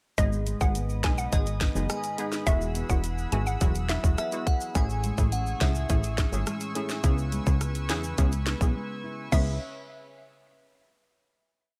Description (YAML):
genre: dancehall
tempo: 105 BPM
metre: 4/4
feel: straight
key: C# minor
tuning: A4 = 436 Hz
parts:
  - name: mallet-like synth pluck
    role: melody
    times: 0.2-4.0, 9.3-9.6 s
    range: D#5 to G#5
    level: -36 LUFS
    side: equal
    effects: chorus
  - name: synth brass stab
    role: accompaniment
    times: 0.2-9.5 s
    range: G#3 to G#4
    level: -38 LUFS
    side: equal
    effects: chorus, sidechain pumping
  - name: lush unison pad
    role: sustained chords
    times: 0.2-9.6 s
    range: C#3 to E6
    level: -42 LUFS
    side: equal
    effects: chorus
  - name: nylon-string guitar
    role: arpeggios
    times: 0.2-9.6 s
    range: G#2 to G#4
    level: -38 LUFS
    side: equal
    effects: none
  - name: plucky analog bass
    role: bass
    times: 0.2-9.6 s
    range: E1 to E2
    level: -31 LUFS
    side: equal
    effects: none
  - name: island pop drum kit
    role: drums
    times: 0.2-9.5 s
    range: crash cymbal, hi-hat, kick drum, rim click, snare drum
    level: -29 LUFS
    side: equal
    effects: none
  - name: tube shaker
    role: percussion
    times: 0.2-9.6 s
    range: none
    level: -45 LUFS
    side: equal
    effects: none
  - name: glassy synth bell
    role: second line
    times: 1.3-9.6 s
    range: D#5 to G#5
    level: -38 LUFS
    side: equal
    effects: chorus, tape echo
room: light reverb, digital ambience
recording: none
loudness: -27 LUFS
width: mono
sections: 0.2-9.3 chorus; 9.3-11.6 final chord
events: break 8.8-9.3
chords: 0.2 G#m; 2.5 Eadd9; 4.8 Amaj7; 7.0 C#m7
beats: | 0.18 0.75 1.32 1.90 | 2.47 3.04 3.61 4.18 | 4.75 5.32 5.89 6.47 | 7.04 7.61 8.18 8.75 | 9.32